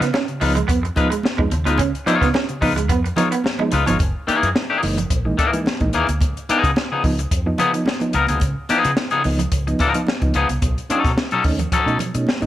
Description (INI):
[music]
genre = funk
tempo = 109 BPM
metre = 4/4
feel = straight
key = Db mixolydian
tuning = A4 = 440 Hz
[part]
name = electric guitar at the edge of break-up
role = riff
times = 0.0-4.0 s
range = F3 to Db4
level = -24 LUFS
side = right 6 dB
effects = analog chorus
[part]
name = reed electric piano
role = stabs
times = 0.0-12.5 s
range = Cb3 to Eb4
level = -24 LUFS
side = right 2 dB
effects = overdrive, fast tremolo
[part]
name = fingered electric bass with an envelope filter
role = bass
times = 0.0-12.5 s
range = Gb1 to Db3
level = -23 LUFS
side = equal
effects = none
[part]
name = compact cocktail drum kit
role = drums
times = 0.0-12.5 s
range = hi-hat, kick drum, snare drum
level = -22 LUFS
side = equal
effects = none
[part]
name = twangy electric guitar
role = accompaniment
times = 0.1-12.5 s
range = Fb3 to Db5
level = -21 LUFS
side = left 4 dB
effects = none
[part]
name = congas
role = percussion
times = 0.1-12.5 s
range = none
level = -30 LUFS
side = right 4 dB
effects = none
[sound]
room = light reverb, small room ambience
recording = none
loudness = -17 LUFS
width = side -13 dB against mid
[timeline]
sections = 0.0-4.0 A section; 4.0-12.5 B section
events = none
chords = 0.0 Db9; 4.0 Gb13; 6.2 Db9; 10.6 Cb9